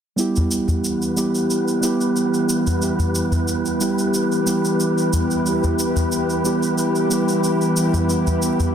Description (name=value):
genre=organic downtempo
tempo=91 BPM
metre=4/4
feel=swing 53% on 16ths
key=E minor pentatonic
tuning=A4 = 438 Hz
part: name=muted felt-like synth keys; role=accompaniment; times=0.2-8.7 s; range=G3 to G4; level=-21 LUFS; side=right 2 dB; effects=chorus, low-pass filter, tape echo
part: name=bowed-like drone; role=sustained chords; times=0.8-8.7 s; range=E3 to G4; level=-23 LUFS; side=left 1 dB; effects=built-in reverb
part: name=shaker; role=drums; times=0.2-8.7 s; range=none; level=-28 LUFS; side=right 1 dB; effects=none
part: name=wind-like tuned noise texture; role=texture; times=0.6-8.7 s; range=B3 to B4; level=-27 LUFS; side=left 1 dB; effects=built-in reverb
part: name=udu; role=percussion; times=0.4-8.7 s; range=none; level=-23 LUFS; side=left 1 dB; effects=none
room=moderate echo chamber reverb, RT60 1.5 s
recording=dense, heavily limited modern master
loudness=-17 LUFS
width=side -8 dB against mid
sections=0.2-8.7 A section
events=filter sweep on synth drone 0.2-8.7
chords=0.2 Em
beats=| 0.19 0.85 1.50 2.17 | 2.82 3.48 4.14 4.80 | 5.46 6.12 6.78 7.44 | 8.10